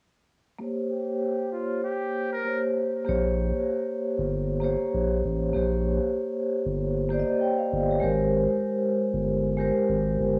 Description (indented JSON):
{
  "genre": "hip hop",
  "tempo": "97 BPM",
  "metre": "4/4",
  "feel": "swing 56% on 16ths",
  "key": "Bb dorian",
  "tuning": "A4 = 441 Hz",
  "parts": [
    { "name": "vibraphone with soft mallets", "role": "accompaniment", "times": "0.6-10.4 s", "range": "Ab3 to G5", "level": "-28 LUFS", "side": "equal", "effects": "high-pass filter, low-pass filter, cassette tape, plate reverb" },
    { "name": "trumpet with metal mute", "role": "melody", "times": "0.9-2.6 s", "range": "F4 to Bb4", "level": "-36 LUFS", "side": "equal", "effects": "high-pass filter, low-pass filter, cassette tape" },
    { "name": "saturated sub bass", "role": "bass", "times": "3.1-10.4 s", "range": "G1 to Bb1", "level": "-30 LUFS", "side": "equal", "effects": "none" }
  ],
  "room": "moderate studio reverb, RT60 0.6 s",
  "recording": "home recording on cassette, studio reverb",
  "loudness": "-26 LUFS",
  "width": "mono",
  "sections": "0.6-3.1 A section; 3.1-10.4 B section",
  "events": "filter sweep 0.6-3.1",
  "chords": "0.6 Bbm69; 8.0 Abmaj9"
}